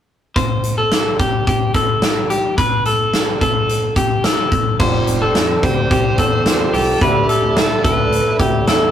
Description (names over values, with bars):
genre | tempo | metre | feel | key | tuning
jangly indie pop | 108 BPM | 4/4 | straight | G mixolydian | A4 = 436 Hz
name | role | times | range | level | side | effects
electric guitar at the edge of break-up | arpeggios | 0.4-8.9 s | G4 to C5 | -18 LUFS | left 1 dB | none
big rock drum kit | drums | 0.4-8.8 s | crash cymbal, hi-hat, kick drum, snare drum | -17 LUFS | equal | none
electric guitar through a small old amp | accompaniment | 4.8-8.9 s | D3 to G4 | -22 LUFS | right 2 dB | none
fat analog bass | bass | 4.8-8.9 s | F1 to F2 | -23 LUFS | right 1 dB | none
dark smooth lead guitar | melody | 5.6-8.4 s | G4 to C5 | -21 LUFS | right 2 dB | overdrive
room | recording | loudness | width
moderate stone room reverb, RT60 1.3 s | rough rehearsal-room recording, tube saturation | -14 LUFS | side -9 dB against mid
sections
0.4-4.8 A section; 4.8-8.9 B section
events
none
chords
0.4 Gsus24; 2.6 Gadd9; 4.8 Fsus2; 7.0 Dsus2